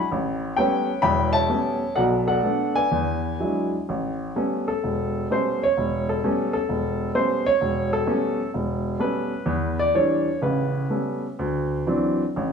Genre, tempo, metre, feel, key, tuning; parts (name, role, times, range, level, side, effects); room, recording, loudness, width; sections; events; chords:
solo jazz; 128 BPM; 4/4; swing 68% on 8ths, rubato; A mixolydian; A4 = 437 Hz
warm upright piano; solo; 0.0-12.5 s; E1 to B5; -21 LUFS; equal
wet large studio reverb, RT60 1.4 s; band playing live in one room, small room reverb; -21 LUFS; side -6 dB against mid
0.0-3.9 A section; 3.9-12.5 B section
upright piano solo 3.9-12.5
0.1 A9; 2.0 Bm7; 2.9 E9; 3.9 A9; 9.5 Em7; 10.4 A9; 11.4 D9